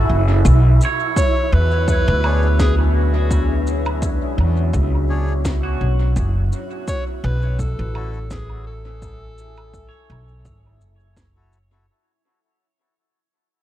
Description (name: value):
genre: ambient dub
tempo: 84 BPM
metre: 4/4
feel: swing 54% on 16ths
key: unclear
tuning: A4 = 440 Hz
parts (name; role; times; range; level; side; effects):
- warm clarinet; melody; 0.0-11.1 s; F#4 to C#5; -26 LUFS; left 1 dB; dub echo
- deep dark ambient pad; sustained chords; 0.0-11.9 s; B3 to A5; -28 LUFS; left 3 dB; chorus, built-in reverb
- pedal steel guitar; arpeggios; 0.0-11.9 s; F#4 to C#5; -30 LUFS; right 7 dB; analog delay
- upright bass; bass; 0.0-11.9 s; F#1 to E2; -17 LUFS; equal; none
- wind-like tuned noise texture; texture; 0.0-11.9 s; E4 to E5; -28 LUFS; right 4 dB; built-in reverb
- electronic kick drum; drums; 0.5-11.3 s; none; -22 LUFS; equal; overdrive
- electronic shaker, woodblock and snare drum; drums; 0.5-11.7 s; none; -32 LUFS; equal; overdrive, dub echo
- melodica; stabs; 2.2-11.9 s; D4 to C#5; -34 LUFS; left 2 dB; dub echo
room: studio reverb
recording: echo-heavy mix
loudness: -16 LUFS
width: side -13 dB against mid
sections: 0.0-11.9 A section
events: fade-out 0.5-11.9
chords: 0.5 Bm69; 6.2 F#m7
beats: | 0.45 1.17 1.88 2.60 | 3.31 4.02 4.74 5.45 | 6.17 6.88 7.59 8.31 | 9.02 9.74 10.45 11.17